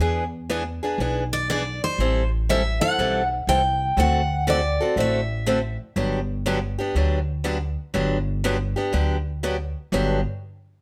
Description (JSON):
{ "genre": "acoustic string swing (jazz manouche)", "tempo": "121 BPM", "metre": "4/4", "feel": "swing 66% on 8ths", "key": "G major", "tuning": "A4 = 440 Hz", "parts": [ { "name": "picked steel-string acoustic guitar", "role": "accompaniment", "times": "0.0-10.2 s", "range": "G2 to A4", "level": "-27 LUFS", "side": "equal", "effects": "none" }, { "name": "upright bass", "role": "bass", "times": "0.0-10.2 s", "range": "G1 to E2", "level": "-27 LUFS", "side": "equal", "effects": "none" }, { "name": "picked steel-string acoustic guitar", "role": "melody", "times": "1.3-5.8 s", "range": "C5 to G5", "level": "-26 LUFS", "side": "equal", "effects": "plate reverb" } ], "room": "moderate studio reverb, RT60 0.8 s", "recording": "none", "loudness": "-23 LUFS", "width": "mono", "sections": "0.0-9.9 A section", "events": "none", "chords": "0.0 E7; 2.0 Am7; 4.0 D7; 6.0 Gmaj7" }